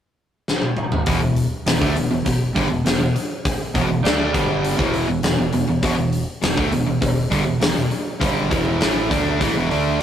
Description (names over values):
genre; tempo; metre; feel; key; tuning
hard rock; 101 BPM; 4/4; straight; E minor; A4 = 440 Hz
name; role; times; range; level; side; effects
big rock drum kit; drums; 0.5-9.8 s; hi-hat, kick drum, snare drum, toms; -21 LUFS; left 1 dB; none
crunchy overdriven guitar; riff; 1.1-10.0 s; E2 to D4; -21 LUFS; right 4 dB; none
distorted electric guitar; riff; 1.1-10.0 s; E2 to D4; -24 LUFS; left 5 dB; overdrive
growling fingered electric bass; bass; 1.1-10.0 s; E1 to D2; -29 LUFS; equal; overdrive
room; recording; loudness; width
light reverb; rough rehearsal-room recording, tube saturation; -17 LUFS; side -9 dB against mid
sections
0.0-1.1 A section; 1.1-10.0 B section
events
drum fill 0.5-1.1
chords
0.0 N.C.; 1.1 Em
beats
0.47 | 1.07 1.66 2.26 2.85 | 3.45 4.04 4.64 5.23 | 5.83 6.42 7.02 7.62 | 8.21 8.81 9.40 10.00